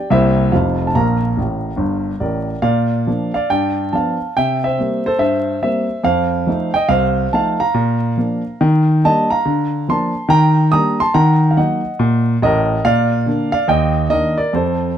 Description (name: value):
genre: jazz, stride piano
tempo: 141 BPM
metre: 4/4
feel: swing 64% on 8ths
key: Bb major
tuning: A4 = 441 Hz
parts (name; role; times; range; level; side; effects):
- warm grand piano; solo; 0.0-15.0 s; F1 to Eb6; -14 LUFS; equal; none
room: moderate studio reverb, RT60 0.7 s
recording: close, detailed microphones, vinyl crackle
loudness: -14 LUFS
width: side -9 dB against mid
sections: 0.0-2.6 A section; 2.6-15.0 B section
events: grand piano fill 1.4-2.6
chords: 0.1 C7; 0.5 F7; 0.9 Bb; 3.5 G7; 4.3 C7; 6.0 F7; 7.7 Bb; 8.6 Ebmaj7; 9.4 Bb/D; 10.3 Ebmaj7; 11.1 Ebm; 12.8 Bb; 13.7 Ebmaj7